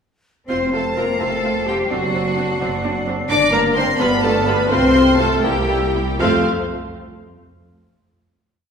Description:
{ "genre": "quick classical-period movement for symphony orchestra", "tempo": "78-87 BPM (dotted quarters)", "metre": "6/8", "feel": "rubato", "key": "F major", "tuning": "A4 = 440 Hz", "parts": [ { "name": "rich studio violin section", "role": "melody", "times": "0.5-6.5 s", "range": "F5 to D6", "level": "-24 LUFS", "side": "left 1 dB", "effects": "none" }, { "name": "dark clarinet", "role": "second line", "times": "0.5-6.4 s", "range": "F4 to D5", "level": "-24 LUFS", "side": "left 1 dB", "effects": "none" }, { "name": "mellow hollow silver concert flute", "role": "second line", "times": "0.5-6.5 s", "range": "E6 to C7", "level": "-27 LUFS", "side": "equal", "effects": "none" }, { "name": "rich studio violin section", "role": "second line", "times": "0.5-6.5 s", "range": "F#4 to D5", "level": "-25 LUFS", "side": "left 3 dB", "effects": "none" }, { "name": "mellow bassoon", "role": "accompaniment", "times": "0.5-6.4 s", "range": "A3-21c to D4", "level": "-26 LUFS", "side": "equal", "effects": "none" }, { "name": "rich studio viola section", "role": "accompaniment", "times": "0.5-6.5 s", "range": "G3 to F4", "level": "-26 LUFS", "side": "right 2 dB", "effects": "none" }, { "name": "mellow French horn section", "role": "sustained chords", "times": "0.5-6.4 s", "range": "F#3 to F4", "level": "-24 LUFS", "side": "left 2 dB", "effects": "none" }, { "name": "rich studio double bass section", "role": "bass", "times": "0.5-6.5 s", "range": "F1 to F2", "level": "-26 LUFS", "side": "right 2 dB", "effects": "none" }, { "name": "warm studio cello section", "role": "bass", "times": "0.5-6.5 s", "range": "F3 to D4", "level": "-23 LUFS", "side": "equal", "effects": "none" } ], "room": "wet recital hall reverb, RT60 1.7 s", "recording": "recorded in a church or concert hall", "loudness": "-15 LUFS", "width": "side -6 dB against mid", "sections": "0.5-6.2 A section; 6.2-7.7 final chord", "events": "none", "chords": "0.5 F; 1.9 D7/F#; 3.3 Gm; 4.0 G7; 4.7 F/C; 5.4 C7; 6.2 F" }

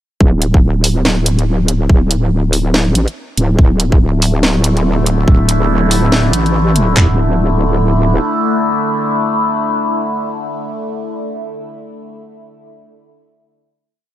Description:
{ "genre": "deep dubstep", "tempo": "142 BPM", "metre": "4/4", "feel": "swing 59% on 16ths, half-time", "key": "unclear", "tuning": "A4 = 440 Hz", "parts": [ { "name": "wobble bass", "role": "bass", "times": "0.2-8.2 s", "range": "D1 to A1", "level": "-13 LUFS", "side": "equal", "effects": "chorus" }, { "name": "garage drum kit", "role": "drums", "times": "0.2-7.1 s", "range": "handclaps, kick drum, toms", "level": "-9 LUFS", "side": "equal", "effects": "none" }, { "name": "garage drum kit", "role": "drums", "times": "0.4-6.9 s", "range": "hi-hat, snare drum", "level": "-16 LUFS", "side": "equal", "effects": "none" }, { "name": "overtone-sweeping drone", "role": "sustained chords", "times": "4.2-11.1 s", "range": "D3 to E4", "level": "-17 LUFS", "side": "left 1 dB", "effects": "chorus, built-in reverb, phaser" } ], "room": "digital ambience", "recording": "none", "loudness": "-11 LUFS", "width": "side -12 dB against mid", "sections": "0.2-7.0 drop; 7.0-10.3 final chord", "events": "drop 0.2-7.0", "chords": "0.2 D5" }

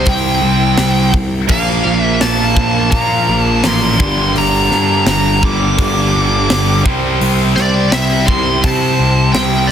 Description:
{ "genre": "heavy metal", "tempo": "84 BPM", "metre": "4/4", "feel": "straight", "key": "unclear", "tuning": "A4 = 437 Hz", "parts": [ { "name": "high-gain lead guitar", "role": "melody", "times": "0.0-9.7 s", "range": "D5 to D6", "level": "-17 LUFS", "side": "equal", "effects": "distortion, digital delay" }, { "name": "clear studio string section", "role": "sustained chords", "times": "0.0-9.7 s", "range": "D4 to G5", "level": "-28 LUFS", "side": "left 1 dB", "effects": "none" }, { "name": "heavy high-gain guitar", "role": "riff", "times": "0.0-9.7 s", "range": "G2 to C5", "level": "-23 LUFS", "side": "left 1 dB", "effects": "distortion" }, { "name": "tight distorted guitar", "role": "riff", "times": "0.0-9.7 s", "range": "G2 to C4", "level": "-19 LUFS", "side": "left 10 dB", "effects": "distortion" }, { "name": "tight distorted guitar", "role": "riff", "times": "0.0-9.7 s", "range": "G2 to C4", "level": "-18 LUFS", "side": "right 12 dB", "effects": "distortion" }, { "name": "fuzz picked electric bass", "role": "bass", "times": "0.0-9.7 s", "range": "G1 to C3", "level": "-17 LUFS", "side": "equal", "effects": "overdrive" }, { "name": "tight metal drum kit", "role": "drums", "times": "0.1-9.5 s", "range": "crash cymbal, hi-hat, kick drum, snare drum", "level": "-19 LUFS", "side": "equal", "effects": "none" } ], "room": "light reverb", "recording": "dense, heavily limited modern master", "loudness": "-11 LUFS", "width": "side -9 dB against mid", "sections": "0.0-9.7 A section", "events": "none", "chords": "0.0 C; 1.5 Bb; 4.0 Gm; 6.8 C" }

